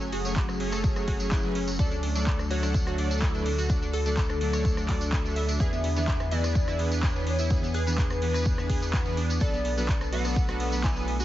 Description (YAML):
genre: progressive house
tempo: 126 BPM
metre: 4/4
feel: straight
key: unclear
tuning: A4 = 436 Hz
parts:
  - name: plucky unison lead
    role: melody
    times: 0.0-11.2 s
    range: G#4 to G#5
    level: -34 LUFS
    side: equal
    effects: wide subtle chorus, cassette tape, sidechain pumping, dub echo
  - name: evolving wavetable pad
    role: sustained chords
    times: 0.0-11.2 s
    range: D3 to G#5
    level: -36 LUFS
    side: equal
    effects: ensemble chorus, built-in reverb, phaser, vintage 12-bit sampler grit, sidechain pumping
  - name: analog pluck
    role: arpeggios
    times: 0.0-11.2 s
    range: F#3 to E5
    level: -36 LUFS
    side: equal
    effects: chorus, cassette tape, sidechain pumping, dub echo
  - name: saturated sub bass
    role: bass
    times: 0.0-11.2 s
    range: F#1 to E2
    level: -30 LUFS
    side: equal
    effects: sidechain pumping
  - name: tambourine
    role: percussion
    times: 0.0-11.2 s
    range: none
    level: -40 LUFS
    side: right 1 dB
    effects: none
  - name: big-room dance drum kit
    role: drums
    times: 0.1-11.2 s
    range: handclaps, hi-hat, rim click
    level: -37 LUFS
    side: equal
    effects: none
  - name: soft supersaw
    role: stabs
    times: 0.2-11.0 s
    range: E3 to F#5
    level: -34 LUFS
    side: right 2 dB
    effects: sidechain pumping, dub echo
  - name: electronic kick drum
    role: drums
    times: 0.4-10.9 s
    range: none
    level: -27 LUFS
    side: equal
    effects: overdrive
room: light reverb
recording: heavily compressed radio sound, nothing above 7.7 kHz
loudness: -24 LUFS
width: side -14 dB against mid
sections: 0.0-11.2 A section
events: none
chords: 0.0 F#madd9; 1.8 D; 5.6 E7; 9.4 Bm7